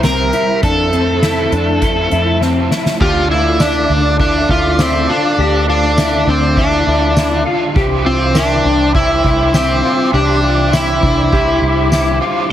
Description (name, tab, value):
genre	dream pop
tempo	101 BPM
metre	4/4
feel	straight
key	unclear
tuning	A4 = 441 Hz
part	overdriven slide guitar	melody	0.0-12.2 s	C4 to Bb4	-16 LUFS	equal	tape echo
part	raw garage guitar	accompaniment	0.0-12.5 s	C3 to C5	-22 LUFS	right 4 dB	overdrive, harmonic tremolo, ensemble chorus
part	bright large flute ensemble	sustained chords	0.0-12.5 s	E4 to D6	-21 LUFS	right 1 dB	none
part	mellow electric guitar	arpeggios	0.0-12.5 s	C4 to G4	-19 LUFS	left 4 dB	ensemble chorus, tape echo
part	vintage muted fingered electric bass	bass	0.0-12.2 s	C2 to F2	-18 LUFS	equal	none
part	soft-mallet drum kit	drums	0.0-12.4 s	crash cymbal, hi-hat, kick drum, ride cymbal, snare drum, tambourine	-19 LUFS	equal	none
part	glassy synth bell	texture	0.6-12.5 s	G4 to D5	-29 LUFS	right 4 dB	none
room	light reverb, small room ambience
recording	heavily compressed radio sound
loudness	-11 LUFS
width	side -11 dB against mid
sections	0.0-3.0 A section; 3.0-12.5 B section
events	drum fill 2.4-3.0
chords	0.0 C7; 0.6 Fmaj7; 3.0 Dm; 7.8 Cadd9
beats	0.04 | 0.63 1.22 1.82 2.41 | 3.01 3.60 4.19 4.79 | 5.38 5.98 6.57 7.16 | 7.76 8.35 8.95 9.54 | 10.13 10.73 11.32 11.92 | 12.51